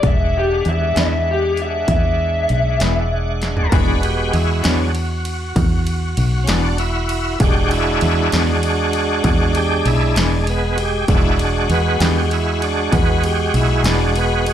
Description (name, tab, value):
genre	slow blues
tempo	65 BPM (dotted quarters)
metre	12/8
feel	straight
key	E mixolydian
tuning	A4 = 439 Hz
part	raw garage guitar	melody	0.0-3.7 s	G4 to E5	-20 LUFS	left 2 dB	overdrive, spring reverb, slapback echo
part	bright tonewheel organ	sustained chords	0.0-14.5 s	F#3 to F#5	-20 LUFS	right 2 dB	slow rotary speaker, overdrive, chorus vibrato
part	fingered electric bass	bass	0.0-14.5 s	E1 to E2	-19 LUFS	equal	none
part	house drum kit	drums	0.0-14.5 s	hi-hat, kick drum, ride cymbal, snare drum, toms	-22 LUFS	equal	none
part	mellow electric guitar	accompaniment	1.0-14.0 s	E3 to G#4	-24 LUFS	left 2 dB	tremolo, slapback echo
room	little or no reverb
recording	live gig heard through the venue's PA, club reverb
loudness	-15 LUFS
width	side -10 dB against mid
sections	0.0-3.7 A section; 3.7-14.5 B section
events	drum fill 3.4-3.7; tonewheel organ solo 3.7-14.5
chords	0.0 E7